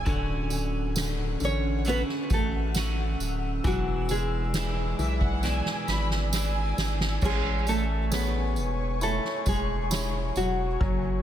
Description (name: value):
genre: pop ballad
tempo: 67 BPM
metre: 4/4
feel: straight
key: A major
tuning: A4 = 440 Hz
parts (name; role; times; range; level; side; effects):
- warm studio violin section; second line; 0.0-7.2 s; E5 to B5; -37 LUFS; right 2 dB; digital delay
- warm baby grand piano; accompaniment; 0.0-11.2 s; D3 to C#5; -36 LUFS; left 4 dB; none
- ethereal airy pad; sustained chords; 0.0-11.2 s; C#4 to E6; -36 LUFS; equal; ensemble chorus, built-in reverb
- twelve-string electric guitar; arpeggios; 0.0-7.7 s; E2 to F#4; -36 LUFS; right 2 dB; spring reverb
- saturated sub bass; bass; 0.0-11.2 s; D1 to B1; -29 LUFS; equal; none
- soft-mallet drum kit; drums; 0.1-11.0 s; crash cymbal, kick drum, ride cymbal, snare drum; -31 LUFS; equal; none
- tambourine; percussion; 0.1-10.6 s; none; -38 LUFS; right 6 dB; none
- nylon-string guitar; melody; 1.4-11.2 s; F#3 to C#5; -31 LUFS; equal; digital delay
room: small room ambience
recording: none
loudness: -25 LUFS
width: side -10 dB against mid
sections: 0.0-7.2 A section; 7.2-11.2 A section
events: drum fill 5.4-7.2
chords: 0.1 Dmaj7; 3.6 E7; 7.2 Amaj7